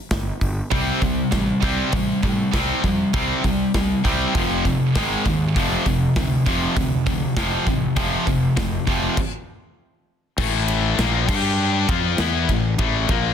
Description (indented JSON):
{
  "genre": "heavy metal",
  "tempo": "99 BPM",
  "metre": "4/4",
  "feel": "straight",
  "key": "unclear",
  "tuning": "A4 = 439 Hz",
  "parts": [
    { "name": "fuzz fingered electric bass", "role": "bass", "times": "0.1-13.3 s", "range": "F1 to A2", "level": "-26 LUFS", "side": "equal", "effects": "overdrive" },
    { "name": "big rock drum kit", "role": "drums", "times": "0.1-13.2 s", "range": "crash cymbal, hi-hat, kick drum, ride cymbal, snare drum", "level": "-24 LUFS", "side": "equal", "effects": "none" },
    { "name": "high-gain distorted guitar", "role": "riff", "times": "0.7-13.3 s", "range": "F2 to G4", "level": "-22 LUFS", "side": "left 9 dB", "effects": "distortion" },
    { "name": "high-gain distorted guitar", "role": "riff", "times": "0.7-9.2 s", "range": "F2 to C4", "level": "-23 LUFS", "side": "right 10 dB", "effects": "distortion" },
    { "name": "heavy high-gain guitar", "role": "riff", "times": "10.4-13.3 s", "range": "A2 to G4", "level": "-25 LUFS", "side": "equal", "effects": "distortion" }
  ],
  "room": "small room ambience",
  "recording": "dense, heavily limited modern master",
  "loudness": "-18 LUFS",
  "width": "side -8 dB against mid",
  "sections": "0.0-10.4 A section; 10.4-13.3 B section",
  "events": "stop 9.2-10.4",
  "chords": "0.0 N.C.; 0.7 C5; 4.4 F5; 5.0 G#5; 5.6 F5; 10.4 A5; 11.3 G5; 11.9 Am"
}